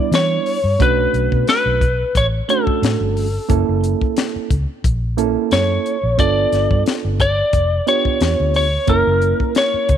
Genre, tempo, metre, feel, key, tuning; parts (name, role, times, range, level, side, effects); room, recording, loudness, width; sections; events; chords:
straight-eighth soul blues; 89 BPM; 4/4; swing 54% on 16ths; B minor; A4 = 440 Hz
lightly driven lead guitar; melody; 0.0-10.0 s; A4 to D5; -18 LUFS; left 2 dB
reed electric piano; accompaniment; 0.0-9.9 s; G3 to A#4; -21 LUFS; right 14 dB
vintage muted fingered electric bass; bass; 0.1-10.0 s; F1 to E3; -19 LUFS; equal
tight funk drum kit; drums; 0.1-10.0 s; hi-hat, kick drum, snare drum; -21 LUFS; left 2 dB
light reverb, small room ambience; 1960s-style stereo; -15 LUFS; side -9 dB against mid
0.0-10.0 A section
0.0 Em7; 0.8 Bm9; 3.5 F#7#9; 6.2 G7; 8.9 F#7